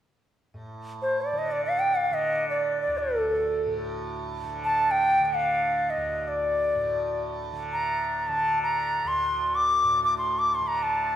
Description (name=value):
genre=indian classical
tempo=free time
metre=none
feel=none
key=D raga bhairavi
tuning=A4 = 440 Hz
part: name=tanpura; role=drone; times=0.5-11.2 s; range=D2 to D3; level=-33 LUFS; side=right 1 dB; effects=none
part: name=bright reedy bansuri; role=melody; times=1.0-11.2 s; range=A4 to D6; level=-23 LUFS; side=equal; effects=none
room=moderate scoring stage reverb, RT60 1.4 s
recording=recorded in a church or concert hall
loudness=-23 LUFS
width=side -10 dB against mid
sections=0.5-11.2 A section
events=none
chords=none